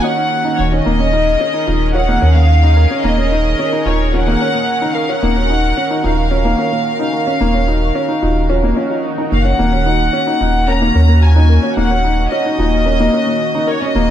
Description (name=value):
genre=piano and strings electronica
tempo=110 BPM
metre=4/4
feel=straight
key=unclear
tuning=A4 = 440 Hz
part: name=rich studio violin section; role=melody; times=0.0-14.1 s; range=Db5 to Bb5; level=-18 LUFS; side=equal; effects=none
part: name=lush unison pad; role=sustained chords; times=0.0-14.1 s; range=Eb3 to Bb4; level=-21 LUFS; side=equal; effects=chorus, phaser
part: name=soft round pluck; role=arpeggios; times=0.0-14.1 s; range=Eb3 to Eb5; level=-25 LUFS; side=left 3 dB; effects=chorus, tape echo
part: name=felt-muted upright piano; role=riff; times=0.0-14.1 s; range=Bb3 to Eb4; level=-19 LUFS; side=equal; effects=none
part: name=warm sub bass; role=bass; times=0.6-14.1 s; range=Eb1 to Eb2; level=-14 LUFS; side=equal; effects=none
part: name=swell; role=sound effects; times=8.7-9.6 s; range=none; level=-28 LUFS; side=left 2 dB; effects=none
room=light reverb, small room ambience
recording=none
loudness=-12 LUFS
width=side -10 dB against mid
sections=0.0-14.1 A section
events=swell 8.7-9.6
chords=0.0 Ebm7; 0.9 Gb6/Eb; 9.6 Ebm7